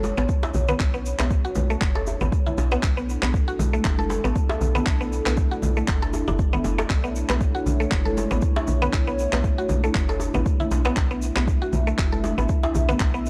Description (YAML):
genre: afro house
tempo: 118 BPM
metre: 4/4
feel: swing 56% on 16ths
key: B minor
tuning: A4 = 439 Hz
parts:
  - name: dark analog pad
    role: sustained chords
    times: 0.0-13.3 s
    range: A3 to E5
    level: -32 LUFS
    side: equal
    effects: chorus, phaser, sidechain pumping
  - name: mallet-like synth pluck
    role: arpeggios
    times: 0.0-13.2 s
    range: A3 to A4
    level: -30 LUFS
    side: equal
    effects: subtle chorus, sidechain pumping, analog delay
  - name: woody FM bass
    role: bass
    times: 0.0-13.3 s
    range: F#1 to B1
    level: -28 LUFS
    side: equal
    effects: tube saturation, sidechain pumping
  - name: congas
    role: percussion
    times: 0.0-13.0 s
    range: none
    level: -34 LUFS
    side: equal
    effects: none
  - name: djembe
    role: percussion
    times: 0.0-12.9 s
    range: none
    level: -36 LUFS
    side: equal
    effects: none
  - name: tube shaker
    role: percussion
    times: 0.0-13.3 s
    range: none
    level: -46 LUFS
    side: equal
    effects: none
  - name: electronic kick drum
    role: drums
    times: 0.3-13.1 s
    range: none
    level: -26 LUFS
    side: equal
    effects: overdrive
  - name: electronic handclaps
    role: drums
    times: 0.8-13.1 s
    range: none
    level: -33 LUFS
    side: equal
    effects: overdrive
room: little or no reverb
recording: dry, gritty hardware recording, cassette tape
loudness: -23 LUFS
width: mono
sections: 0.0-13.3 A section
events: none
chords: 0.0 Bm11